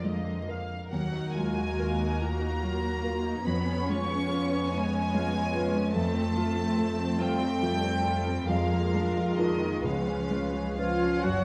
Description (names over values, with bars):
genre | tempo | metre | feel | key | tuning
cinematic, emotional film score for orchestra | 43-49 BPM (dotted quarters) | 6/8 | rubato | unclear | A4 = 443 Hz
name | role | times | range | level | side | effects
clear studio violin section | melody | 0.0-11.4 s | Eb5 to Db6 | -37 LUFS | equal | none
dark studio violin section | second line | 0.0-11.4 s | Ab3 to F5 | -38 LUFS | equal | none
dark baby grand piano | accompaniment | 0.0-11.4 s | Db2 to Cb5 | -36 LUFS | equal | none
dark studio viola section | accompaniment | 0.0-11.4 s | D3 to Gb4 | -36 LUFS | equal | none
warm studio cello section | bass | 0.0-11.4 s | Eb3 to Db4 | -36 LUFS | equal | none
warm studio double bass section | bass | 0.0-11.4 s | F#1 to F2 | -36 LUFS | equal | none
flute section | second line | 10.8-11.4 s | Db5 to C#5 | -39 LUFS | equal | none
warm oboe | second line | 10.8-11.4 s | F4 to F#4 | -37 LUFS | equal | none
warm French horn section | sustained chords | 10.8-11.4 s | F3 to F#3 | -34 LUFS | equal | none
room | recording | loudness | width
moderate scoring stage reverb, RT60 1.5 s | vinyl crackle | -29 LUFS | mono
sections
0.0-11.2 A section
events
none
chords
0.0 Bb7/F; 0.9 Ebmadd9; 3.5 Db7/F; 6.0 F; 8.5 Bb7/F; 9.9 Db7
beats
| 0.91 2.21 | 3.47 4.73 | 5.96 7.21 | 8.49 9.85 | 11.24